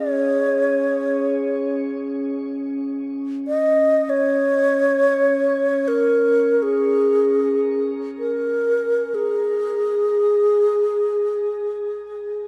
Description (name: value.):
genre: world meditative, free-time meditation music.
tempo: free time.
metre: none.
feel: none.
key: unclear.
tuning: A4 = 440 Hz.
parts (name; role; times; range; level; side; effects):
breathy wooden-headed alto flute; melody; 0.0-12.5 s; Ab4 to Eb5; -20 LUFS; equal; shimmer reverb, tape echo.
glass harmonica; texture; 0.0-7.8 s; Db4 to Ab4; -28 LUFS; equal; shimmer reverb.
room: wet church reverb, RT60 3.2 s.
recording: dark, warm production.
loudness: -20 LUFS.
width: mono.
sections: 0.0-12.5 A section.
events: none.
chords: none.